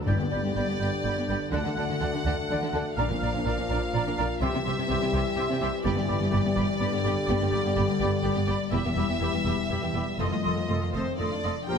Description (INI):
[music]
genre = cinematic, heroic adventure film score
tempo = 124 BPM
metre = 3/4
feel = straight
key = G major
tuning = A4 = 441 Hz
[part]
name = rich symphonic violin section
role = melody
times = 0.0-11.8 s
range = C5 to G5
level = -33 LUFS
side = left 1 dB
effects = none
[part]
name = dark chamber viola section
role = accompaniment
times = 0.0-11.8 s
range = A3 to D4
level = -36 LUFS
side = equal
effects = none
[part]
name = concert harp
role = arpeggios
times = 0.0-11.8 s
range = E2 to A5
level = -33 LUFS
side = left 10 dB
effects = none
[part]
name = timpani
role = percussion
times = 0.0-0.8, 5.8-6.5 s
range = G2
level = -34 LUFS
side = left 3 dB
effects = none
[part]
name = large flute ensemble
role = second line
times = 0.1-11.8 s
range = A5 to C6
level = -37 LUFS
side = right 2 dB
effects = none
[part]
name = warm clarinet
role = second line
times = 0.1-11.8 s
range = G4 to D5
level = -37 LUFS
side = left 1 dB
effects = none
[part]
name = warm oboe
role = second line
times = 0.1-11.8 s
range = D5 to G5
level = -39 LUFS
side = right 1 dB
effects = none
[part]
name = warm symphonic violin section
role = second line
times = 0.1-11.8 s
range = F4 to Bb5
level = -40 LUFS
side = equal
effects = none
[part]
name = clear trombone section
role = sustained chords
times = 0.1-11.8 s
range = D3 to C4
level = -36 LUFS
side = right 3 dB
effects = none
[part]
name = mellow French horn section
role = sustained chords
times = 0.1-11.8 s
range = C3 to G4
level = -36 LUFS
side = left 5 dB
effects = none
[part]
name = rich symphonic double bass section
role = bass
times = 0.1-11.8 s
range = E1 to D2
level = -32 LUFS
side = right 2 dB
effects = none
[part]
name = warm symphonic cello section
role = bass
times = 0.1-11.8 s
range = E2 to D3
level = -32 LUFS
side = right 2 dB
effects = none
[part]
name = warm tuba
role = bass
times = 11.7-11.8 s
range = Bb1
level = -30 LUFS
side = right 5 dB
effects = none
[sound]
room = moderate scoring stage reverb, RT60 1.6 s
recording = none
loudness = -24 LUFS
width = side -6 dB against mid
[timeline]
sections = 0.1-11.7 A section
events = build-up 0.1-11.7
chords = 0.1 G; 1.5 D; 3.0 Bb; 4.4 C; 5.9 G; 8.7 Em; 10.2 F7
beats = | 0.07 0.56 1.05 | 1.53 2.01 2.50 | 2.98 3.46 3.94 | 4.42 4.90 5.37 | 5.85 6.33 6.81 | 7.29 7.77 8.25 | 8.74 9.22 9.71 | 10.21 10.70 11.20 | 11.69